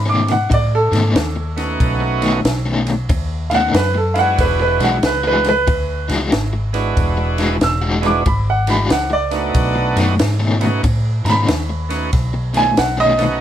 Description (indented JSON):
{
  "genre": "electric blues shuffle",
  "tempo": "93 BPM",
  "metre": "4/4",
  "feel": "swing 64% on 8ths",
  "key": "unclear",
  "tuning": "A4 = 442 Hz",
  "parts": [
    { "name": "bright upright piano", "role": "second line", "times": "0.0-13.4 s", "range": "A4 to E6", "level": "-18 LUFS", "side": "right 2 dB", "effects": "none" },
    { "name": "vintage muted fingered electric bass", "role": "bass", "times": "0.0-13.4 s", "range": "E1 to A2", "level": "-20 LUFS", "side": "equal", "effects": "none" },
    { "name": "crunchy overdriven guitar", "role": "riff", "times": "0.1-13.2 s", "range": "B2 to F#4", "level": "-20 LUFS", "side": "left 3 dB", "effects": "tremolo" },
    { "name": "compact cocktail drum kit", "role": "drums", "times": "0.3-13.3 s", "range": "kick drum, ride cymbal, snare drum", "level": "-22 LUFS", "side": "equal", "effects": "none" },
    { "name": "bright tonewheel organ", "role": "accompaniment", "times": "1.6-13.4 s", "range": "G#3 to F#4", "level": "-20 LUFS", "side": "right 4 dB", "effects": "overdrive, slow rotary speaker" }
  ],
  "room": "moderate studio ambience, RT60 0.5 s",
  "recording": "band playing live in one room",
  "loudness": "-14 LUFS",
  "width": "side -10 dB against mid",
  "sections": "0.0-13.4 A section",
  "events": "upright piano solo 0.0-13.4",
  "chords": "0.0 B9; 4.4 E9",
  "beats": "0.51 1.16 | 1.80 2.45 3.10 3.74 | 4.39 5.03 5.68 6.33 | 6.97 7.62 8.26 8.91 | 9.55 10.20 10.84 11.49 | 12.13 12.78"
}